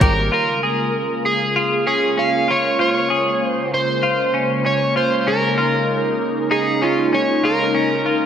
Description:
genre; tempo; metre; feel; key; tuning
dream pop; 97 BPM; 4/4; straight; Bb dorian; A4 = 437 Hz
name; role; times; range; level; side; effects
overdriven slide guitar; melody; 0.0-8.3 s; F4 to F5; -19 LUFS; right 1 dB; digital delay
phased analog pad; sustained chords; 0.0-8.3 s; Db3 to G4; -22 LUFS; equal; phaser, chorus
semi-hollow electric guitar; arpeggios; 0.0-8.3 s; Db4 to Ab4; -22 LUFS; left 2 dB; wide subtle chorus, digital delay
room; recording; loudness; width
wet plate reverb, RT60 2.0 s; bright 1980s-style digital production; -16 LUFS; side -8 dB against mid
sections
0.3-8.3 A section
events
none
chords
0.3 Bbm7; 5.3 Eb7sus4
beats
| 0.32 0.94 1.56 2.17 | 2.79 3.41 4.03 4.65 | 5.27 5.89 6.50 7.12 | 7.74

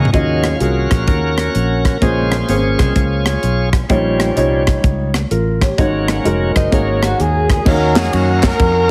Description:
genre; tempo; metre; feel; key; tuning
uptempo gospel; 128 BPM; 4/4; swing 64% on 8ths; unclear; A4 = 437 Hz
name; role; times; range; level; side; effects
warm grand piano; accompaniment; 0.0-8.4 s; Ab2 to F5; -21 LUFS; equal; none
bright tonewheel organ; sustained chords; 0.0-8.9 s; Db3 to F5; -23 LUFS; equal; fast rotary speaker, overdrive
fingered electric bass; bass; 0.0-8.9 s; F1 to Gb2; -21 LUFS; equal; none
crisp fusion drum kit; drums; 0.1-8.7 s; crash cymbal, hi-hat, kick drum, ride cymbal, rim click, snare drum, toms; -19 LUFS; equal; none
clean electric guitar; second line; 6.6-7.6 s; Gb4 to Eb5; -26 LUFS; equal; spring reverb
warm horn section; melody; 7.0-8.9 s; Db4 to Bb4; -19 LUFS; equal; none
group handclap; percussion; 8.0-8.5 s; none; -28 LUFS; equal; none
room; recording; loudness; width
light reverb, small room ambience; heavily compressed radio sound, multiband compression; -15 LUFS; mono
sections
0.1-7.7 A section; 7.7-8.9 B section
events
tonewheel organ solo 0.1-7.7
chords
0.1 Ebm9; 2.0 Bbm9; 3.9 Eb9/Bb; 5.8 Ab7sus4; 6.7 Ab9sus4; 7.7 Ebm9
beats
| 0.14 0.61 1.08 1.55 | 2.02 2.49 2.96 3.43 | 3.90 4.37 4.84 5.31 | 5.78 6.25 6.72 7.19 | 7.66 8.13 8.60

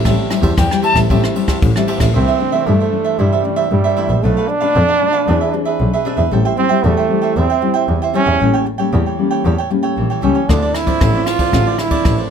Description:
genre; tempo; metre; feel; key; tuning
samba and choro; 115 BPM; 4/4; straight; C major; A4 = 441 Hz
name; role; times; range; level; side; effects
cavaquinho; accompaniment; 0.0-12.3 s; D4 to A5; -21 LUFS; right 8 dB; none
nylon-string guitar; accompaniment; 0.0-12.3 s; G2 to G#4; -19 LUFS; left 4 dB; none
warm double bass; bass; 0.1-12.1 s; A1 to G2; -17 LUFS; equal; none
jazz brush drum kit; drums; 0.1-2.1, 10.5-12.2 s; kick drum, ride cymbal, rim click; -18 LUFS; equal; none
wooden flute; melody; 0.6-1.0 s; G5 to A5; -16 LUFS; left 4 dB; none
bright trombone; second line; 2.1-12.3 s; G3 to F4; -17 LUFS; right 4 dB; none
room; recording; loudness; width
moderate small room reverb, RT60 0.6 s; none; -13 LUFS; side -7 dB against mid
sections
0.0-2.1 A section; 2.1-12.3 B section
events
flute solo 0.0-2.1; trombone solo 2.1-12.3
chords
0.0 Am7; 2.1 C69; 4.2 Bm7b5; 5.3 E7b13; 6.3 Am7; 8.4 A7b9; 10.5 Dm9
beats
| 0.05 0.57 1.10 1.62 | 2.14 2.67 3.19 3.71 | 4.23 4.75 5.28 5.80 | 6.32 6.84 7.37 7.89 | 8.41 8.93 9.45 9.97 | 10.49 11.01 11.53 12.05

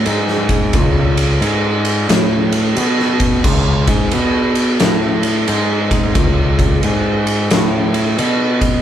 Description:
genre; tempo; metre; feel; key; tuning
stoner and doom metal; 89 BPM; 4/4; swing 64% on 8ths; unclear; A4 = 440 Hz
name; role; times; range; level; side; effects
fuzz picked electric bass; bass; 0.0-8.8 s; C#2 to B2; -16 LUFS; equal; overdrive
oversized low-tuned drum kit; drums; 0.1-8.7 s; crash cymbal, kick drum, ride cymbal, snare drum; -16 LUFS; equal; none
room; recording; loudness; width
light reverb; band playing live in one room; -13 LUFS; side -10 dB against mid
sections
0.0-8.8 A section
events
none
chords
none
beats
0.07 | 0.74 1.42 2.10 2.77 | 3.45 4.12 4.80 5.48 | 6.15 6.83 7.51 8.18

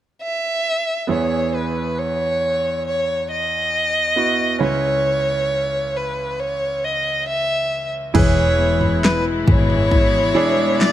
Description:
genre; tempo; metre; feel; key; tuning
pop ballad; 68 BPM; 4/4; straight; E major; A4 = 439 Hz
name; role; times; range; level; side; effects
dark violin; melody; 0.2-10.9 s; B4 to E5; -20 LUFS; equal; none
bright concert grand piano; accompaniment; 1.1-10.9 s; C#2 to B4; -24 LUFS; right 4 dB; none
vintage muted fingered electric bass; bass; 8.1-10.9 s; E1 to G#1; -21 LUFS; left 1 dB; none
pop drum kit; drums; 8.1-10.9 s; crash cymbal, kick drum, snare drum, toms; -18 LUFS; equal; none
warm studio string section; sustained chords; 8.2-10.9 s; B2 to E4; -24 LUFS; left 3 dB; none
fingerpicked steel-string acoustic guitar; arpeggios; 8.2-10.9 s; E3 to G#4; -24 LUFS; left 6 dB; none
room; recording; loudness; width
light reverb, small room ambience; none; -17 LUFS; side -12 dB against mid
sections
0.0-1.1 A section; 1.1-8.1 B section; 8.1-10.9 C section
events
none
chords
0.0 N.C.; 1.1 E; 4.6 C#m7; 8.1 E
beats
0.21 | 1.09 1.97 2.85 3.74 | 4.62 5.50 6.38 7.27 | 8.15 9.03 9.91 10.80

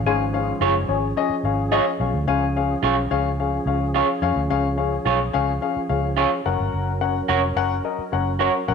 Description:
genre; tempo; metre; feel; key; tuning
soul; 108 BPM; 4/4; straight; unclear; A4 = 439 Hz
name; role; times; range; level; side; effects
percussive tonewheel organ; sustained chords; 0.0-8.7 s; E#3 to A#4; -30 LUFS; right 2 dB; slow rotary speaker, chorus vibrato
vintage muted fingered electric bass; bass; 0.0-8.7 s; E#1 to E#2; -25 LUFS; right 1 dB; none
dark upright piano; accompaniment; 0.1-8.7 s; G#2 to F#5; -23 LUFS; left 8 dB; none
electric guitar through a small old amp; stabs; 0.6-8.5 s; E#4 to C#5; -23 LUFS; right 10 dB; none
room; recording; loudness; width
moderate echo chamber reverb, RT60 1.4 s, studio ambience; 1960s-style stereo with parts hard left and right; -19 LUFS; side -6 dB against mid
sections
0.1-2.3 A section; 2.3-8.7 B section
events
none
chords
0.1 C#; 6.4 F#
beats
| 0.05 0.61 1.16 1.72 | 2.27 2.83 3.39 3.94 | 4.50 5.06 5.61 6.17 | 6.73 7.28 7.84 8.40

